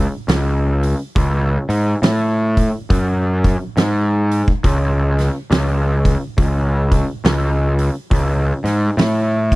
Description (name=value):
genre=stoner and doom metal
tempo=69 BPM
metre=4/4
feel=swing 62% on 8ths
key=unclear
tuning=A4 = 440 Hz
part: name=fuzz picked electric bass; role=bass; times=0.0-9.6 s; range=C#2 to A2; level=-16 LUFS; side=equal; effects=overdrive
part: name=oversized low-tuned drum kit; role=drums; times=0.3-9.6 s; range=hi-hat, kick drum, snare drum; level=-19 LUFS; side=equal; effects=none
room=little or no reverb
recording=dry, close 1970s-style studio recording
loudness=-15 LUFS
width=side -21 dB against mid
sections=0.0-9.6 A section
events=none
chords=none